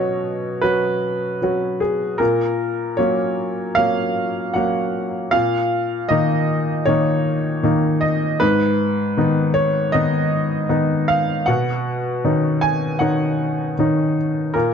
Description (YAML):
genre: neoclassical minimalist piano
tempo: 78 BPM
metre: 4/4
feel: rubato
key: unclear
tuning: A4 = 439 Hz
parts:
  - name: clear upright piano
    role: solo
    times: 0.0-14.7 s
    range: G#2 to G#5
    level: -17 LUFS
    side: equal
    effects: none
room: light reverb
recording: dark, warm production, nothing above 7.5 kHz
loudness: -17 LUFS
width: side -7 dB against mid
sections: 0.0-14.7 A section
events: none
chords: 0.0 Badd9; 2.2 F#/A#; 5.3 D#sus2/A#; 8.4 G#m; 11.5 Badd9